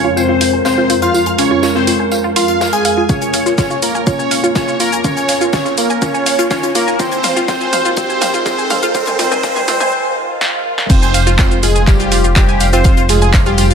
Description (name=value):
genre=melodic techno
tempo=123 BPM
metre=4/4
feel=straight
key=F minor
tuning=A4 = 440 Hz
part: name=wide unison lead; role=melody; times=0.0-13.7 s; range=G3 to Ab4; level=-18 LUFS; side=equal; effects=sidechain pumping, digital delay
part: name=big bright polysynth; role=second line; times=0.0-13.7 s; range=G4 to Ab5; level=-19 LUFS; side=right 1 dB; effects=chorus, phaser, cassette tape, sidechain pumping, ping-pong delay
part: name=deep dark ambient pad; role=sustained chords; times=0.0-13.7 s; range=Bb2 to C6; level=-22 LUFS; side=left 1 dB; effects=chorus, built-in reverb, sidechain pumping
part: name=wide unison pluck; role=arpeggios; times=0.0-13.7 s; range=F4 to Ab5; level=-19 LUFS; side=equal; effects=sidechain pumping, ping-pong delay
part: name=swarming drone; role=drone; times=0.0-9.9 s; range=F2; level=-28 LUFS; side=equal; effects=built-in reverb, sidechain pumping
part: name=gated 80s drum kit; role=drums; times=0.2-13.7 s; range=hi-hat, snare drum, tambourine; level=-27 LUFS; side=left 1 dB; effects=sidechain pumping on hats, high-pass filter on hats, high-pass filter on snare, sidechain pumping on perc, high-pass filter on perc, high-pass filter on room
part: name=techno drum kit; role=drums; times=0.4-13.7 s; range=crash cymbal, handclaps, hi-hat, shaker, snare drum, toms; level=-19 LUFS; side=equal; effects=none
part: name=electronic kick drum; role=drums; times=3.1-13.4 s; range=none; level=-13 LUFS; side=equal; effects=none
part: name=riser and swell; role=sound effects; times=5.4-10.9 s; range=none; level=-24 LUFS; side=equal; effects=none
part: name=round analog bass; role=bass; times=10.9-13.7 s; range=F1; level=-14 LUFS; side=equal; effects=sidechain pumping
room=moderate lush hall reverb, RT60 1.9 s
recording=high-pass filter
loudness=-11 LUFS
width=side -7 dB against mid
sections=0.0-10.9 A section; 10.9-13.7 B section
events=build-up 0.0-10.9; filter sweep on synth arpeggio sound 0.0-10.9; drum fill 3.1-9.9, 10.4-10.9; riser 5.4-9.9; break 9.9-10.9; swell 9.9-10.9; drop 10.9-13.7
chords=0.0 Fmadd11; 3.1 Bbm; 7.0 Abadd9; 10.9 Fm